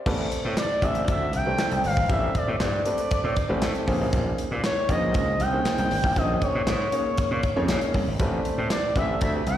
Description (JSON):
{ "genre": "early-eighties boogie funk", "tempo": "118 BPM", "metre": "4/4", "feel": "straight", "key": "unclear", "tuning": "A4 = 441 Hz", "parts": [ { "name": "warm grand piano", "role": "accompaniment", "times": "0.0-9.4 s", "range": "A3 to Ab5", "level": "-29 LUFS", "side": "equal", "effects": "slapback echo" }, { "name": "gritty slap bass", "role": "bass", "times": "0.1-9.6 s", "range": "G1 to Bb2", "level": "-27 LUFS", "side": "equal", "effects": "overdrive" }, { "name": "modern studio drum kit", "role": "drums", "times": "0.1-9.6 s", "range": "crash cymbal, handclaps, hi-hat, kick drum, snare drum", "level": "-27 LUFS", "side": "equal", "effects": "none" }, { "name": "expressive portamento lead", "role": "melody", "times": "0.6-9.6 s", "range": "Db5 to G5", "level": "-27 LUFS", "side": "equal", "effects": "chorus, slapback echo, analog delay" }, { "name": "analog synth brass", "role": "second line", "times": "9.0-9.4 s", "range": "E4 to B4", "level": "-41 LUFS", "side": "right 3 dB", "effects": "chorus, slapback echo" } ], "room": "light reverb, studio reverb", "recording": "live gig heard through the venue's PA, recital hall reverb", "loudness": "-22 LUFS", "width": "side -11 dB against mid", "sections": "0.1-9.6 A section", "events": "grand piano fill 3.4-4.1", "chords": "0.1 Am11; 3.9 Bbm11; 8.2 Am11", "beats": "| 0.06 0.57 1.08 1.59 | 2.10 2.60 3.11 3.62 | 4.13 4.64 5.15 5.66 | 6.16 6.67 7.18 7.69 | 8.20 8.71 9.21" }